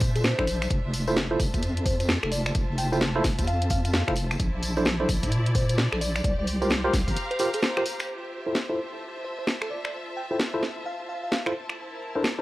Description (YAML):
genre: UK garage, two-step garage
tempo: 130 BPM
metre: 4/4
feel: swing 62% on 16ths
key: F major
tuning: A4 = 439 Hz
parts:
  - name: bell-like FM electric piano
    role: melody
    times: 0.0-11.5 s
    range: A4 to G5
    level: -33 LUFS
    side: left 1 dB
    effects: chorus, tape echo
  - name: deep soft wobble bass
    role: bass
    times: 0.0-7.2 s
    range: F1 to Bb2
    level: -27 LUFS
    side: equal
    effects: chorus, tube saturation
  - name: electronic kick drum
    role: drums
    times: 0.0-7.1 s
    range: none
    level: -28 LUFS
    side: equal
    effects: none
  - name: garage drum kit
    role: drums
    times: 0.0-12.4 s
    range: finger snaps, hi-hat, snare drum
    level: -28 LUFS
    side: equal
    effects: none
  - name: tambourine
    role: percussion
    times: 0.0-8.1 s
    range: none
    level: -40 LUFS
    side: left 3 dB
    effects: none
  - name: bright studio string section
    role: texture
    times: 0.0-12.4 s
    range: D4 to Bb5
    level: -35 LUFS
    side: equal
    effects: sidechain pumping
  - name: tine electric piano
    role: stabs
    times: 0.4-12.4 s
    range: D4 to C5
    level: -28 LUFS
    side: right 1 dB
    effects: medium stereo tremolo, vintage 12-bit sampler grit, low-pass filter, tape echo
room: digital ambience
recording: dry, gritty hardware recording, vinyl crackle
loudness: -24 LUFS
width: side -17 dB against mid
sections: 0.0-8.1 A section; 8.1-12.4 B section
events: filter sweep on tine electric piano 8.1-12.4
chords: 0.0 Bbmaj9#11; 0.7 Fmaj7; 4.4 Bbmaj9#11; 6.2 C7sus4; 8.1 Fmaj7; 11.8 Bbmaj9#11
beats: 0.24 | 0.70 1.17 1.63 2.09 | 2.55 3.01 3.47 3.94 | 4.40 4.86 5.32 5.78 | 6.24 6.70 7.17 7.63 | 8.09 8.55 9.01 9.47 | 9.94 10.40 10.86 11.32 | 11.78 12.24